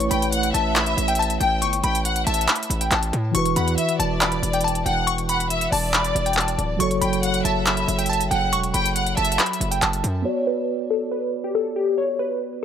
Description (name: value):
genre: hip hop, trap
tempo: 139 BPM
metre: 4/4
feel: half-time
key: B minor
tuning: A4 = 440 Hz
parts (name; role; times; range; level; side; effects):
- glassy wavetable pluck; melody; 0.0-12.6 s; G4 to C#6; -24 LUFS; left 1 dB; chorus, low-pass filter, tape echo
- mellow tine electric piano; accompaniment; 0.0-12.6 s; E3 to D5; -27 LUFS; right 1 dB; medium stereo tremolo, low-pass filter
- distorted 808-style bass; bass; 0.0-10.2 s; D1 to A2; -25 LUFS; equal; distortion
- trap drum kit; drums; 0.0-10.1 s; handclaps, hi-hat; -24 LUFS; equal; none
- warm studio violin section; second line; 0.1-9.4 s; D5 to G5; -26 LUFS; left 2 dB; tape echo
room: light reverb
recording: none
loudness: -19 LUFS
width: side -8 dB against mid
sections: 0.0-10.3 A section; 10.3-12.6 B section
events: filter sweep 10.3-12.6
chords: 0.0 Aadd9; 3.3 Esus2; 6.8 F#m; 10.3 Bmadd9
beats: 0.33 0.76 1.19 | 1.62 2.05 2.48 2.92 | 3.35 3.78 4.21 4.64 | 5.07 5.50 5.94 6.37 | 6.80 7.23 7.66 8.10 | 8.53 8.96 9.39 9.82 | 10.25 10.69 11.12 11.55 | 11.98 12.41